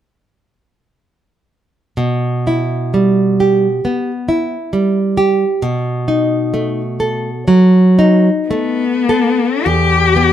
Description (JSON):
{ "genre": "romantic duo for cello and classical guitar", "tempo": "48-69 BPM", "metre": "4/4", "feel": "rubato", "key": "E minor", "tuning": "A4 = 440 Hz", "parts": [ { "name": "nylon-string guitar", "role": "accompaniment", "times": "2.0-10.3 s", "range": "E2 to A4", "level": "-13 LUFS", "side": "right 1 dB", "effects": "none" }, { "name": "rich cello", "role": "melody", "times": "8.5-10.3 s", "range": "B3 to G4", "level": "-13 LUFS", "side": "left 5 dB", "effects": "none" } ], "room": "light reverb", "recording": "band playing live in one room", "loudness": "-12 LUFS", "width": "side -10 dB against mid", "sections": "2.0-9.6 A section", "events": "none", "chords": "2.0 Em/B; 5.6 B7; 9.6 Em" }